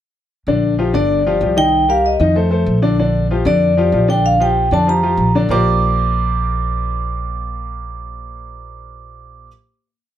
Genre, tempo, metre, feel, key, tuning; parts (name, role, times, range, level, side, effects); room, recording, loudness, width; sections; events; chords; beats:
Afro-Cuban jazz; 191 BPM; 4/4; straight; Bb major; A4 = 440 Hz
clear upright piano; accompaniment; 0.5-9.5 s; D3 to Eb5; -19 LUFS; left 3 dB
upright bass; bass; 0.5-9.5 s; G1 to F2; -18 LUFS; equal
vibraphone with medium mallets; melody; 0.9-9.5 s; D5 to D6; -18 LUFS; right 1 dB
light reverb; -13 LUFS; side -11 dB against mid
0.5-5.5 A section; 5.5-8.0 final chord
0.5 Bb6; 1.1 G5; 1.7 Cm7; 2.4 F6; 3.0 Bb6; 5.5 Bb69
| 0.47 0.78 1.10 1.41 | 1.73 2.04 2.36 2.67 | 2.99 3.30 3.62 3.93 | 4.25 4.56 4.88 5.19 | 5.50 5.82 6.13 6.45 | 6.76 7.07 7.39 7.70